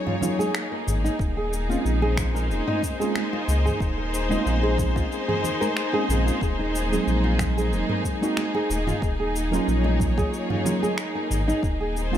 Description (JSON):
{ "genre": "organic downtempo", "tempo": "92 BPM", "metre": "4/4", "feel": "swing 54% on 16ths", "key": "Eb dorian", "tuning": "A4 = 442 Hz", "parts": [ { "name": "muted felt-like synth keys", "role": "accompaniment", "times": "0.0-12.2 s", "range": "Gb3 to Ab4", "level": "-29 LUFS", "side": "right 3 dB", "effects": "chorus, sidechain pumping, ping-pong delay" }, { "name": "rich studio string section", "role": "sustained chords", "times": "0.0-12.2 s", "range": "Bb3 to Db5", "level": "-28 LUFS", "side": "left 1 dB", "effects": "sidechain pumping" }, { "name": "nylon-string guitar", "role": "arpeggios", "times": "0.1-12.2 s", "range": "Eb4 to Bb4", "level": "-29 LUFS", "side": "equal", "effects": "ping-pong delay" }, { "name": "afro-pop drum kit", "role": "drums", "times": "0.1-12.2 s", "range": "cabasa, finger snaps, toms", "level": "-32 LUFS", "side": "equal", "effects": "small room reverb" }, { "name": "congas", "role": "percussion", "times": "0.1-12.2 s", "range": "none", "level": "-35 LUFS", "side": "right 3 dB", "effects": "none" }, { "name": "warm sub bass", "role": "bass", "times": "0.9-12.2 s", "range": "Eb1 to Db2", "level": "-25 LUFS", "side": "equal", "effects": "sidechain pumping" }, { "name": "electronic kick drum", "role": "drums", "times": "1.2-11.8 s", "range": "none", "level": "-28 LUFS", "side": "equal", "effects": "small room reverb" } ], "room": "moderate plate reverb, RT60 1.4 s, studio ambience", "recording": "dreamy mix soaked in reverb", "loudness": "-22 LUFS", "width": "side -10 dB against mid", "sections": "0.0-12.2 A section", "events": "none", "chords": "0.0 Ebm9; 1.2 Bbm7/Eb; 6.4 Ab9/Eb; 9.0 Ebm9; 11.6 Bb7(no3)/Eb" }